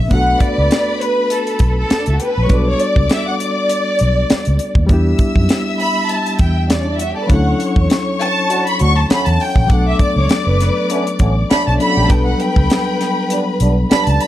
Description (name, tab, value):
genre	lush 1970s-style soul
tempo	100 BPM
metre	4/4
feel	swing 54% on 16ths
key	unclear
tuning	A4 = 439 Hz
part	barky reed electric piano	accompaniment	0.0-14.3 s	F#3 to A4	-21 LUFS	left 2 dB	overdrive, fast tremolo
part	vintage muted fingered electric bass	bass	0.0-14.2 s	F#1 to F#2	-16 LUFS	equal	none
part	warm symphonic violin section	melody	0.1-14.3 s	A4 to C#6	-19 LUFS	equal	none
part	rich studio string section	second line	0.1-14.2 s	C#4 to E6	-24 LUFS	left 2 dB	none
part	tight funk drum kit	drums	0.1-14.3 s	hi-hat, kick drum, snare drum	-16 LUFS	equal	none
part	muted trombone section	stabs	8.5-14.3 s	F#3 to F#4	-23 LUFS	right 1 dB	none
room	light reverb, small room ambience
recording	dark, warm production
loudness	-13 LUFS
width	side -13 dB against mid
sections	0.0-14.3 A section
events	violin section solo 0.0-14.3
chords	0.1 Bm7; 2.5 Gmaj7/B; 4.9 Em7; 7.3 Dmaj7; 9.7 Bm9; 12.1 Gmaj7/B